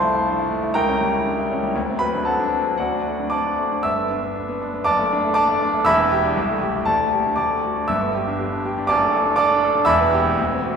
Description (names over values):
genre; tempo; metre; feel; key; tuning
classical, virtuoso piano study; 119 BPM; 2/4; rubato; unclear; A4 = 438 Hz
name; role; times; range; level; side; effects
clear grand piano; solo; 0.0-10.8 s; E1 to E6; -18 LUFS; equal; none
room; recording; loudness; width
wet church reverb, RT60 2.9 s; recorded in a church or concert hall; -18 LUFS; side -6 dB against mid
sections
0.0-3.9 A section; 3.9-10.8 B section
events
none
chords
0.0 Am/C; 0.8 C#dim7; 1.7 D7; 2.8 D; 3.9 G; 4.9 D/F#; 5.9 Em7; 6.4 Am7/C; 6.9 Dsus4; 7.4 D; 7.9 G; 8.9 D/F#; 9.9 Em